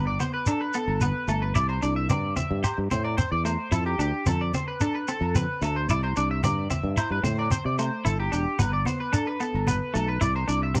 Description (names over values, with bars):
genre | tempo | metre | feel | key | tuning
highlife guitar band | 111 BPM | 4/4 | straight | C major | A4 = 440 Hz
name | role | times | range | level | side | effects
semi-hollow electric guitar | accompaniment | 0.0-10.8 s | A3 to G4 | -34 LUFS | equal | spring reverb
electric guitar at the edge of break-up | arpeggios | 0.0-10.8 s | G4 to E5 | -32 LUFS | equal | analog chorus
sustaining fretless electric bass | bass | 0.0-10.8 s | E1 to C3 | -30 LUFS | equal | analog chorus
congas | percussion | 0.2-10.8 s | none | -34 LUFS | equal | none
shekere | percussion | 0.2-10.8 s | none | -30 LUFS | equal | none
agogo bells | percussion | 0.5-10.8 s | none | -40 LUFS | equal | none
room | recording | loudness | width
little or no reverb | dry, close 1970s-style studio recording | -26 LUFS | mono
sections
0.0-10.8 A section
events
none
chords
0.0 G; 1.6 C; 3.7 Fadd9; 5.9 C; 8.1 G; 10.2 C